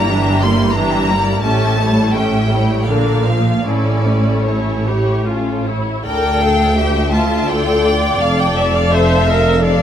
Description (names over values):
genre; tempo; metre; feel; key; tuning
classical, slow romantic movement for string orchestra; 73-90 BPM; 3/4; rubato; D minor; A4 = 436 Hz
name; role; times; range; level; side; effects
clear studio violin section; melody; 0.0-9.8 s; C#5 to C6; -20 LUFS; left 3 dB; none
rich studio violin section; second line; 0.0-9.8 s; C#4 to F5; -22 LUFS; left 3 dB; none
rich studio viola section; accompaniment; 0.0-9.8 s; D3 to D5; -18 LUFS; equal; none
clear studio cello section; bass; 0.0-9.8 s; D2 to Bb2; -21 LUFS; right 2 dB; none
rich studio double bass section; bass; 0.0-9.8 s; F1 to D2; -18 LUFS; right 1 dB; none
room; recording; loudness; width
moderate scoring stage reverb, RT60 2.0 s; none; -13 LUFS; side -9 dB against mid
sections
0.0-6.0 A section; 6.0-9.8 A section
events
none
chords
0.0 Em7b5/G; 1.4 A7; 2.9 Bb; 3.7 A; 6.0 Dm; 8.2 Dm/F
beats
0.09 0.76 | 1.44 2.15 2.88 | 3.66 4.47 5.27 | 6.05 6.77 7.48 | 8.21 8.92 9.63